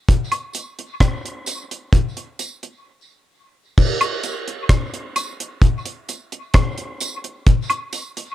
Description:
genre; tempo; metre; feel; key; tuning
reggae; 65 BPM; 4/4; straight; none; none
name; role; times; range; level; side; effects
deep reggae drum kit; drums; 0.1-8.3 s; crash cymbal, hi-hat, kick drum, rim click; -17 LUFS; equal; none
woodblock and tambourine; percussion; 0.3-8.1 s; none; -25 LUFS; equal; dub echo
room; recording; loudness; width
little or no reverb; dark, warm production; -19 LUFS; side -14 dB against mid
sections
0.0-3.8 A section; 3.8-8.3 B section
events
break 2.9-3.8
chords
none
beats
| 0.08 1.01 1.93 2.85 | 3.78 4.70 5.62 6.54 | 7.46

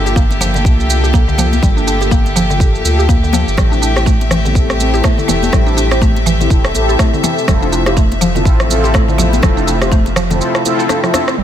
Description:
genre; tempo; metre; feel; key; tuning
afro house; 123 BPM; 4/4; swing 58% on 16ths; unclear; A4 = 439 Hz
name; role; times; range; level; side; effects
rich chamber string section; sustained chords; 0.0-11.4 s; C3 to E5; -20 LUFS; equal; sidechain pumping
mallet-like synth pluck; arpeggios; 0.0-11.4 s; D3 to G4; -20 LUFS; equal; chorus, sidechain pumping, dub echo
mellow synth brass; stabs; 0.0-11.4 s; Bb3 to C5; -19 LUFS; left 2 dB; chorus, sidechain pumping, dub echo
warm sub bass; bass; 0.0-11.4 s; E1 to D2; -16 LUFS; equal; sidechain pumping
afro-pop drum kit; drums; 0.1-11.4 s; crash cymbal, rim click, shaker; -20 LUFS; right 2 dB; low-pass filter on perc, low-pass filter on snare, low-pass filter on cymbals
congas; percussion; 0.1-11.3 s; none; -23 LUFS; left 4 dB; none
electronic kick drum; drums; 0.2-10.0 s; none; -13 LUFS; equal; none
room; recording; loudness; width
light reverb; none; -10 LUFS; side -10 dB against mid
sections
0.0-11.4 A section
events
filter sweep on analog polysynth 0.0-11.4; drum fill 10.9-11.4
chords
0.0 Gm9; 3.6 Am7; 7.5 Fmaj7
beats
0.16 0.65 1.14 | 1.63 2.12 2.60 3.09 | 3.58 4.07 4.55 5.04 | 5.53 6.02 6.50 6.99 | 7.48 7.97 8.46 8.94 | 9.43 9.92 10.41 10.89 | 11.38

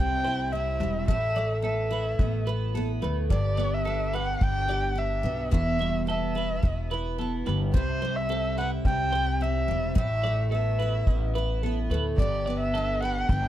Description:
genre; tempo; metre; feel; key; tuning
acoustic pop; 108 BPM; 4/4; straight; unclear; A4 = 440 Hz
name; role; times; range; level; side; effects
dark erhu; melody; 0.0-13.5 s; C5 to G5; -29 LUFS; equal; plate reverb
picked steel-string acoustic guitar; accompaniment; 0.0-13.5 s; E2 to G4; -30 LUFS; equal; double-tracked left and right
upright bass; bass; 0.0-13.5 s; E1 to D2; -29 LUFS; equal; none
twelve-string electric guitar; arpeggios; 0.2-13.1 s; A4 to E5; -36 LUFS; right 4 dB; plate reverb, digital delay
kick drum; drums; 1.1-13.4 s; none; -25 LUFS; equal; none
room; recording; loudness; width
light reverb; dark, warm production; -24 LUFS; side -12 dB against mid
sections
0.0-13.5 A section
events
none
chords
0.0 C; 1.1 Asus2; 3.3 G; 5.5 Em; 7.7 C; 10.0 Asus2; 12.2 G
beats
0.53 | 1.08 1.64 2.19 2.75 | 3.30 3.86 4.41 4.97 | 5.52 6.08 6.63 7.19 | 7.74 8.30 8.85 9.41 | 9.96 10.52 11.07 11.63 | 12.18 12.74 13.29

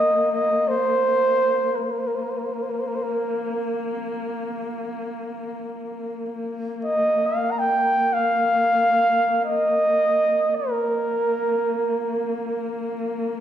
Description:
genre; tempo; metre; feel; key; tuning
mongolian traditional, Mongolian folk; free time; none; none; Bb zhi mode; A4 = 439 Hz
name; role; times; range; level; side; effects
mellow flugelhorn; melody; 0.0-12.8 s; Bb4 to Bb5; -20 LUFS; right 1 dB; none
dark horsehead fiddle; drone; 0.0-13.4 s; Bb3; -28 LUFS; left 2 dB; none
room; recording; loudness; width
wet recital hall reverb, RT60 1.8 s; recorded in a church or concert hall; -20 LUFS; side -10 dB against mid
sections
0.0-6.3 A section; 6.3-13.4 A section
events
none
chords
none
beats
free time

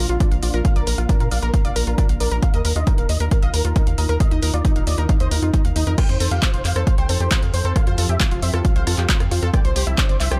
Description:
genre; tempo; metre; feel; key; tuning
uplifting trance; 135 BPM; 4/4; straight; F major; A4 = 442 Hz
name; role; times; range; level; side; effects
dense compressed supersaw; melody; 0.0-10.4 s; Eb4 to G5; -29 LUFS; equal; sidechain pumping, low-pass filter, tape echo
shimmering ambient pad; sustained chords; 0.0-10.4 s; C3 to Bb4; -35 LUFS; equal; chorus, built-in reverb, sidechain pumping
analog pluck; arpeggios; 0.0-10.4 s; D4 to F5; -33 LUFS; equal; chorus, sidechain pumping, tape echo
tight sequencer bass; bass; 0.0-10.4 s; Eb1 to Bb2; -23 LUFS; equal; sidechain pumping
punchy analog drum machine; drums; 0.1-10.4 s; crash cymbal, handclaps, hi-hat, rim click; -28 LUFS; equal; none
electronic kick drum; drums; 0.2-10.1 s; none; -21 LUFS; equal; none
room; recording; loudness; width
digital ambience; none; -19 LUFS; mono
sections
0.0-10.4 A section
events
none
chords
0.0 Bb; 2.4 Ebsus2; 6.0 Fadd9; 9.5 Cadd9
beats
0.20 | 0.65 1.09 1.54 1.98 | 2.42 2.87 3.31 3.76 | 4.20 4.65 5.09 5.54 | 5.98 6.42 6.87 7.31 | 7.76 8.20 8.65 9.09 | 9.54 9.98

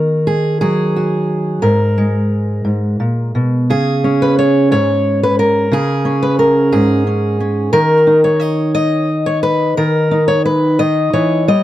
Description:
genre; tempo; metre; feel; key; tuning
folk, solo fingerstyle acoustic guitar; 59 BPM (dotted quarters); 6/8; rubato; G# minor; A4 = 439 Hz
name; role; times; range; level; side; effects
fingerpicked steel-string acoustic guitar; solo; 0.0-11.6 s; G#2 to D#5; -12 LUFS; equal; none
room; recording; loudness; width
light reverb; dry, close 1970s-style studio recording; -12 LUFS; side -13 dB against mid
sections
0.0-3.7 A section; 3.7-11.6 B section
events
none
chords
0.0 D#m; 1.6 G#sus2; 3.7 C#5; 7.7 D#5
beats
0.62 | 1.62 2.65 | 3.70 4.73 | 5.73 6.72 | 7.73 8.74 | 9.77 10.79

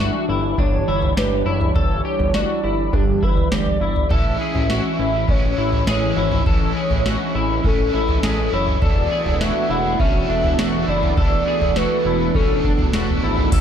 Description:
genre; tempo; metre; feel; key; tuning
dream pop; 102 BPM; 4/4; straight; unclear; A4 = 441 Hz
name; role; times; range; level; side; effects
warbly nostalgic lead; melody; 0.0-12.9 s; G4 to F#5; -24 LUFS; equal; chorus, ping-pong delay
lush unison pad; sustained chords; 0.0-13.6 s; E3 to A4; -24 LUFS; right 1 dB; chorus, phaser
electric guitar at the edge of break-up; arpeggios; 0.0-13.6 s; C#4 to A4; -26 LUFS; left 3 dB; analog chorus, ping-pong delay
fat analog bass; bass; 0.0-13.6 s; E1 to A1; -24 LUFS; equal; none
booming analog drum machine; drums; 0.6-13.6 s; crash cymbal, kick drum, snare drum, tambourine, toms; -21 LUFS; equal; none
cranked stack guitar; accompaniment; 4.1-13.6 s; E2 to E4; -28 LUFS; right 2 dB; overdrive, harmonic tremolo, lush chorus
room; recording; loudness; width
light reverb, digital ambience; dark, warm production; -16 LUFS; side -8 dB against mid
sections
0.0-13.5 A section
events
none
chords
0.0 Em7; 4.1 Amaj7; 8.8 E7sus4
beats
0.58 1.17 | 1.76 2.35 2.94 3.52 | 4.11 4.70 5.29 5.88 | 6.46 7.05 7.64 8.23 | 8.82 9.41 9.99 10.58 | 11.17 11.76 12.35 12.94 | 13.52

